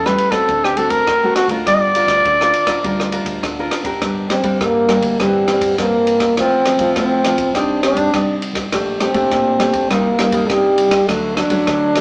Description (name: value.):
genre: samba and choro.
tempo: 102 BPM.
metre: 4/4.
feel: straight.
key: G minor.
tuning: A4 = 442 Hz.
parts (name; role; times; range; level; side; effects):
mellow trumpet; melody; 0.0-3.4 s; F#4 to Eb5; -14 LUFS; equal; none.
nylon-string guitar; accompaniment; 0.0-12.0 s; G2 to D5; -20 LUFS; equal; none.
deep dub fingered electric bass; bass; 0.0-12.0 s; G1 to D3; -27 LUFS; equal; none.
compact cocktail drum kit; drums; 0.1-12.0 s; kick drum, ride cymbal, rim click; -22 LUFS; equal; none.
breathy trombone; second line; 4.3-12.0 s; G3 to D4; -15 LUFS; equal; none.
room: wet studio reverb, RT60 0.6 s.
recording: heard from further back in the room, small speaker sound.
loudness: -13 LUFS.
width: side -33 dB against mid.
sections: 0.0-4.0 A section; 4.0-12.0 B section.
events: trombone solo 4.0-12.0.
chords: 0.5 D7; 1.7 Gm7; 4.0 Gm; 5.2 C7/G; 6.4 F/A; 7.6 Cmadd9; 8.7 Gmadd9/Bb; 9.9 Cm7; 11.1 D.